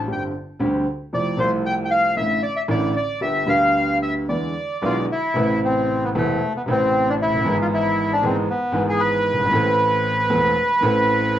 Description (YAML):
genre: tango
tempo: 115 BPM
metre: 4/4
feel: rubato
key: A harmonic minor from 5.4 s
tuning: A4 = 436 Hz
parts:
  - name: warm grand piano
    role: accompaniment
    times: 0.0-11.4 s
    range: E1 to B4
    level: -22 LUFS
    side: equal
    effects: none
  - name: bandoneon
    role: melody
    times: 0.1-11.4 s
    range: A3 to G5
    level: -20 LUFS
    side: equal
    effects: plate reverb
room: wet club reverb, RT60 0.5 s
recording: heard from further back in the room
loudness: -18 LUFS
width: side -11 dB against mid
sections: 0.0-5.4 A section; 5.4-11.4 B section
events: none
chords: 0.1 Gsus4; 1.1 Fmaj7; 2.2 Dsus2/A; 3.2 G; 4.3 E7; 5.4 Amadd9; 7.5 E/G#; 9.5 Am